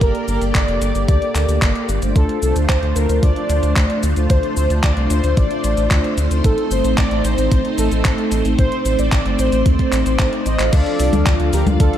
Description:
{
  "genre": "italo disco",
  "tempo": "112 BPM",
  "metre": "4/4",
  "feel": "straight",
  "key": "unclear",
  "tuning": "A4 = 438 Hz",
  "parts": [
    { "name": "analog synth brass", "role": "melody", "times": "0.0-12.0 s", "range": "F4 to Eb5", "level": "-23 LUFS", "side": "equal", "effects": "chorus, ping-pong delay" },
    { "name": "string machine, full ensemble", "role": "sustained chords", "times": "0.0-12.0 s", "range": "F3 to D5", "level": "-23 LUFS", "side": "equal", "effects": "phaser, ensemble chorus" },
    { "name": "mellow synth brass", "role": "stabs", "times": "0.0-12.0 s", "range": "A3 to F5", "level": "-25 LUFS", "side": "left 2 dB", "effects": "chorus" },
    { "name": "round analog bass", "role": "bass", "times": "0.0-11.9 s", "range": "F1 to Eb2", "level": "-19 LUFS", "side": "equal", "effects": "tube saturation" },
    { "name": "clean 12-bit digital drum machine", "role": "drums", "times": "0.0-12.0 s", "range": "cabasa, congas, crash cymbal, handclaps, hi-hat", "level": "-24 LUFS", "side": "left 1 dB", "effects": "overdrive, small room ambience, gated reverb" },
    { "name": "electronic kick drum", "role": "drums", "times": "0.0-11.9 s", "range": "none", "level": "-16 LUFS", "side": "equal", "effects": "overdrive, small room ambience" }
  ],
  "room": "light reverb",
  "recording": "none",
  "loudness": "-14 LUFS",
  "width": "side -10 dB against mid",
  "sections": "0.0-10.7 A section; 10.7-12.0 B section",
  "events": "drum fill 10.2-10.7",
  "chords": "0.0 Gmadd9; 2.2 Dm7; 6.4 Adim; 10.7 Dm"
}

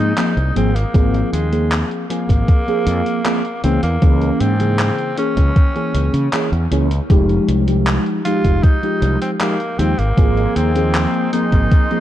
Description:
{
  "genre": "vaporwave",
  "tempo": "78 BPM",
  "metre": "4/4",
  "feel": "straight",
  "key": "Ab major",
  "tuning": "A4 = 441 Hz",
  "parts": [
    { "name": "raspy tenor saxophone", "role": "melody", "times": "0.0-12.0 s", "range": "Ab3 to F4", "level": "-24 LUFS", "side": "equal", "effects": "tape echo" },
    { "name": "mellow FM electric piano", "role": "accompaniment", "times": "0.0-12.0 s", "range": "Db3 to Ab4", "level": "-19 LUFS", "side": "equal", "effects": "phaser, wide subtle chorus, analog delay" },
    { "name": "fretless electric bass", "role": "bass", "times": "0.0-11.7 s", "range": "F1 to Db3", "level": "-17 LUFS", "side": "equal", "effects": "tube saturation" },
    { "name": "gated 80s digital drum machine", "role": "drums", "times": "0.2-12.0 s", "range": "handclaps, hi-hat", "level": "-26 LUFS", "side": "equal", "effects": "gated reverb" },
    { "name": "electronic kick drum", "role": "drums", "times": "0.9-11.9 s", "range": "none", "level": "-13 LUFS", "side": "equal", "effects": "overdrive" },
    { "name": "lush unison pad", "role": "sustained chords", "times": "10.2-12.0 s", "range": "Bb4 to C6", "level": "-29 LUFS", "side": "right 1 dB", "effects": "chorus" }
  ],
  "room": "light reverb",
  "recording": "dark, warm production, cassette tape",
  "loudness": "-14 LUFS",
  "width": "side -12 dB against mid",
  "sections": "0.0-12.0 A section",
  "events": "none",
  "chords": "0.0 Ab69; 3.6 Dbm6; 7.1 Fm9; 10.2 Ab69"
}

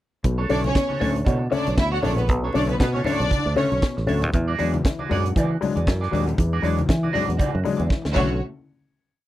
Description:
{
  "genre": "disco",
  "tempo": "118 BPM",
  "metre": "4/4",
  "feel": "swing 56% on 16ths",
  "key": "B dorian",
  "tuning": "A4 = 440 Hz",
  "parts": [
    { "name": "clean electric guitar", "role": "accompaniment", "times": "0.2-8.3 s", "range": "D4 to D5", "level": "-30 LUFS", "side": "right 6 dB", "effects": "wah" },
    { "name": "warm baby grand piano", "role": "accompaniment", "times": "0.2-8.4 s", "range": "B2 to D4", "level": "-26 LUFS", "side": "left 5 dB", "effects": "none" },
    { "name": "fingered electric bass", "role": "bass", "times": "0.2-8.4 s", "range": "A1 to E3", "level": "-24 LUFS", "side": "right 1 dB", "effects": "none" },
    { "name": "tight funk drum kit", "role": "drums", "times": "0.2-8.3 s", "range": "crash cymbal, hi-hat, kick drum, snare drum", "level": "-22 LUFS", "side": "equal", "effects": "none" },
    { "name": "congas", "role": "percussion", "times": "0.2-8.4 s", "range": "none", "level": "-30 LUFS", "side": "left 3 dB", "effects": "none" },
    { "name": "rich symphonic string section", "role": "second line", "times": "0.5-3.8, 8.1-8.4 s", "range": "A3 to F#5", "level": "-25 LUFS", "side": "right 1 dB", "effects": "none" }
  ],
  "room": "little or no reverb",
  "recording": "dry, close 1970s-style studio recording",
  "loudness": "-20 LUFS",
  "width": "side -14 dB against mid",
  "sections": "0.2-8.4 groove; 8.4-9.3 final hit",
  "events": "drum fill 7.9-8.4",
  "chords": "0.2 Bm9; 4.3 E9; 8.2 Bm9; 8.4 N.C."
}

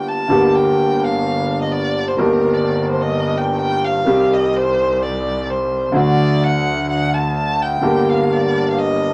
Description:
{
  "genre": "tango",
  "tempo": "127 BPM",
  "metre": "4/4",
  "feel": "rubato",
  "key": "G minor",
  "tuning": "A4 = 439 Hz",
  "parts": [
    { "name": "warm violin", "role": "second line", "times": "0.0-9.1 s", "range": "Bb4 to A5", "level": "-23 LUFS", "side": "equal", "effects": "none" },
    { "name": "warm concert grand piano", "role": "accompaniment", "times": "0.0-9.1 s", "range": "G1 to G4", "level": "-19 LUFS", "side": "equal", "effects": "none" },
    { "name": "clear double bass", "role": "bass", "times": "0.3-9.1 s", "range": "G1 to D2", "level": "-27 LUFS", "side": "equal", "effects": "none" }
  ],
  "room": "moderate club reverb, RT60 0.5 s",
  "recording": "none",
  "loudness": "-17 LUFS",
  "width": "mono",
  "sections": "0.3-9.1 A section",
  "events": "break 0.0; violin solo 0.3-9.1",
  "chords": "0.3 Gm; 2.2 Eb6/G; 4.1 Cm; 5.9 D; 7.8 Gm"
}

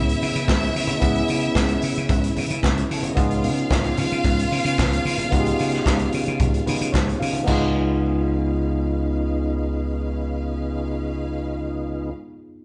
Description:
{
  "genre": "disco",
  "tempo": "112 BPM",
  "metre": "4/4",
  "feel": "straight",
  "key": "unclear",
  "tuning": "A4 = 435 Hz",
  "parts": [
    { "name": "clear studio string section", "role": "second line", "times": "0.0-12.1 s", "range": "A3 to E#5", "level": "-32 LUFS", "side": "equal", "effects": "none" },
    { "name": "tine electric piano", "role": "accompaniment", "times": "0.0-12.6 s", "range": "B3 to E#5", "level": "-29 LUFS", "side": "equal", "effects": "none" },
    { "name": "tonewheel organ", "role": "sustained chords", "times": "0.0-12.1 s", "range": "C#3 to E#4", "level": "-31 LUFS", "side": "equal", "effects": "chorus vibrato, slow rotary speaker" },
    { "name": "vintage slap bass", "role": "bass", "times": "0.0-12.1 s", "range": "C#2 to C#3", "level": "-27 LUFS", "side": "equal", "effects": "none" },
    { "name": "vintage drum kit", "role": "drums", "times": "0.1-7.6 s", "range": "crash cymbal, handclaps, hi-hat, kick drum, snare drum", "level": "-26 LUFS", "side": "equal", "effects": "none" },
    { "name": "congas", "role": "percussion", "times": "0.2-7.7 s", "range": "none", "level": "-35 LUFS", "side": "equal", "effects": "none" }
  ],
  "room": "moderate large studio reverb, RT60 1.0 s",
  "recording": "band playing live in one room, nothing above 10.3 kHz",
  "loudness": "-22 LUFS",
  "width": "mono",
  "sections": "0.0-7.5 A section; 7.5-11.8 B section",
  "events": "tine electric piano fill 6.4-7.5",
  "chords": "0.0 C#m7; 3.2 C#7"
}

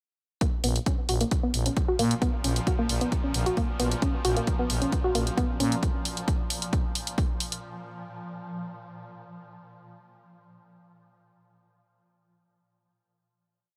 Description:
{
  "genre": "driving peak-time techno",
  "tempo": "133 BPM",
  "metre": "4/4",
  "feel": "straight",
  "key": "Bb phrygian",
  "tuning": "A4 = 440 Hz",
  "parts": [
    { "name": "woody wave-folded pluck", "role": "riff", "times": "0.4-5.7 s", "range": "Bb3 to Gb4", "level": "-32 LUFS", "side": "equal", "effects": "chorus, sidechain pumping, dub echo" },
    { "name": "swarming drone", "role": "drone", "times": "1.6-7.7 s", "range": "Bb2 to F3", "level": "-40 LUFS", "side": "equal", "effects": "built-in reverb, sidechain pumping" },
    { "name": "electronic hi-hat", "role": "drums", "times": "0.4-7.6 s", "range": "none", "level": "-34 LUFS", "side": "equal", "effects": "sidechain pumping on hats" },
    { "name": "electronic kick drum", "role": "drums", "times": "0.4-7.3 s", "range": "none", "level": "-30 LUFS", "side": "equal", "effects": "none" },
    { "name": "growling FM bass", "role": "bass", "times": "0.6-5.8 s", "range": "Bb1 to Bb2", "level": "-30 LUFS", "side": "equal", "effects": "sidechain pumping" }
  ],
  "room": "light reverb",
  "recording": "none",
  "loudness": "-27 LUFS",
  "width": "mono",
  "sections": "0.4-7.6 groove",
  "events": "filter sweep on synth arpeggio sound 0.4-5.8",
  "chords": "0.4 Bb5"
}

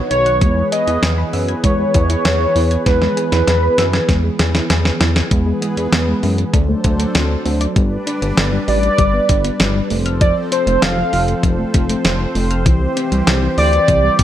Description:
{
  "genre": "synth-pop",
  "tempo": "98 BPM",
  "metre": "4/4",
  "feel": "straight",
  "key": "G mixolydian from 7.8 s",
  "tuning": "A4 = 440 Hz",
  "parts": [
    { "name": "warm velvety synth lead", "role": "melody", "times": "0.0-4.7, 8.7-14.2 s", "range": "B4 to F5", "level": "-18 LUFS", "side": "equal", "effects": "chorus, analog delay" },
    { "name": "brassy analog pad", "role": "sustained chords", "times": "0.0-14.2 s", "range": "D#3 to D5", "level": "-22 LUFS", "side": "equal", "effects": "chorus" },
    { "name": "soft round pluck", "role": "arpeggios", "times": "0.1-14.2 s", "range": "E3 to G#6", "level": "-23 LUFS", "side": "left 2 dB", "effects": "chorus, analog delay" },
    { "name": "chorused synth bass", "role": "bass", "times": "0.1-14.2 s", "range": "F1 to F#2", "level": "-18 LUFS", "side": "equal", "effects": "none" },
    { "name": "clean 12-bit digital drum machine", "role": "drums", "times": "0.1-14.2 s", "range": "hi-hat, kick drum, snare drum", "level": "-18 LUFS", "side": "equal", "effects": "none" }
  ],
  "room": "light reverb",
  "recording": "none",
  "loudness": "-13 LUFS",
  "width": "side -11 dB against mid",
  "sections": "0.0-5.3 A section; 5.3-7.8 B section; 7.8-14.2 C section",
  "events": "drum fill 2.9-5.3",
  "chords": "0.4 E; 6.5 D7; 7.8 G; 9.9 F; 12.7 C"
}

